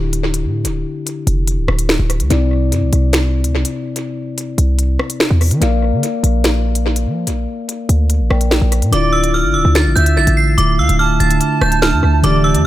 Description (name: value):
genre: hip hop, drill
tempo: 145 BPM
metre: 4/4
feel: half-time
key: D minor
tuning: A4 = 438 Hz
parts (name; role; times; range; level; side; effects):
- mellow tine electric piano; accompaniment; 0.0-12.7 s; C3 to G5; -21 LUFS; left 4 dB; none
- hard-hitting 808-style bass; bass; 0.0-12.6 s; C1 to F3; -15 LUFS; equal; none
- drill drum kit; drums; 0.1-12.6 s; finger snaps, hi-hat, rim click, snare drum; -19 LUFS; equal; tape echo
- metallic FM bell; melody; 8.9-12.7 s; D6 to C7; -17 LUFS; right 1 dB; chorus, tape echo
- bright reedy jazz flute; second line; 8.9-12.6 s; D5 to A5; -22 LUFS; right 6 dB; tape echo
- warbly tape-like pad; sustained chords; 9.3-12.7 s; D3 to D4; -20 LUFS; right 4 dB; chorus, built-in reverb
room: little or no reverb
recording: echo-heavy mix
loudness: -13 LUFS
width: side -14 dB against mid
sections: 0.0-8.9 A section; 8.9-12.7 B section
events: break 0.0-2.3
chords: 0.0 Dmadd9; 2.3 Cadd9; 5.6 Bb; 8.9 Dmadd9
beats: 0.24 | 0.65 1.06 1.48 1.89 | 2.31 2.72 3.13 3.55 | 3.96 4.37 4.79 5.20 | 5.62 6.03 6.44 6.86 | 7.27 7.68 8.10 8.51 | 8.93 9.34 9.75 10.17 | 10.58 10.99 11.41 11.82 | 12.24 12.65